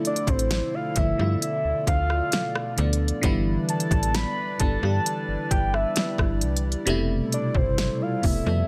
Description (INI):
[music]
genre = contemporary R&B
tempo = 66 BPM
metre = 4/4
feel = straight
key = unclear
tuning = A4 = 439 Hz
[part]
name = FM electric piano with soft pad layer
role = accompaniment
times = 0.0-8.7 s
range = B2 to G4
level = -30 LUFS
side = equal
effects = chorus, phaser
[part]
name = hollow soft pad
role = sustained chords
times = 0.0-8.7 s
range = B2 to D5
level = -37 LUFS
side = equal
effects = chorus
[part]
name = smooth R&B drum kit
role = drums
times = 0.0-8.4 s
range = hi-hat, kick drum, rim click, snare drum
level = -28 LUFS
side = equal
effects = none
[part]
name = soft octave-layered synth lead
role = melody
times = 0.1-8.7 s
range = C5 to B5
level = -30 LUFS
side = equal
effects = chorus, phaser, delay
[part]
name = slap-like FM bass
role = bass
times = 0.3-8.6 s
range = F1 to G2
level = -28 LUFS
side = equal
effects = none
[sound]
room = little or no reverb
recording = none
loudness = -24 LUFS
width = mono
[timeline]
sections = 0.0-8.7 A section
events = none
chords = 0.0 G13 (rootless); 3.2 Em7/G; 6.9 Fmaj9#11